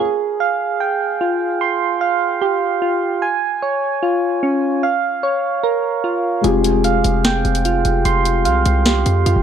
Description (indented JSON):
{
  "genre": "hip hop, trap",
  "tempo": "149 BPM",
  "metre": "4/4",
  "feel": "half-time",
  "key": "F minor",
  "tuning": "A4 = 440 Hz",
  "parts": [
    { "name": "felt-muted upright piano", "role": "accompaniment", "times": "0.0, 6.4-9.4 s", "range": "Ab3 to G4", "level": "-21 LUFS", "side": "left 7 dB", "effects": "low-pass filter" },
    { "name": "soft electric-piano-like synth keys", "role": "arpeggios", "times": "0.0-9.4 s", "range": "Db4 to C6", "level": "-17 LUFS", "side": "right 3 dB", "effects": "chorus, low-pass filter, digital delay" },
    { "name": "hard-hitting 808-style bass", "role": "bass", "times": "6.4-9.4 s", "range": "F1 to F2", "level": "-18 LUFS", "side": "equal", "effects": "none" },
    { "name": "trap drum kit", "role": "drums", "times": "6.4-9.4 s", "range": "hi-hat, snare drum", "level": "-20 LUFS", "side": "left 1 dB", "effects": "none" }
  ],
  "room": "digital ambience",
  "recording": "dark, warm production",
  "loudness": "-15 LUFS",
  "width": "side -8 dB against mid",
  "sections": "0.0-9.4 A section",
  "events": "none",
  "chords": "0.0 Fmadd9; 3.2 Db; 4.8 Bbm; 6.4 Fmadd9"
}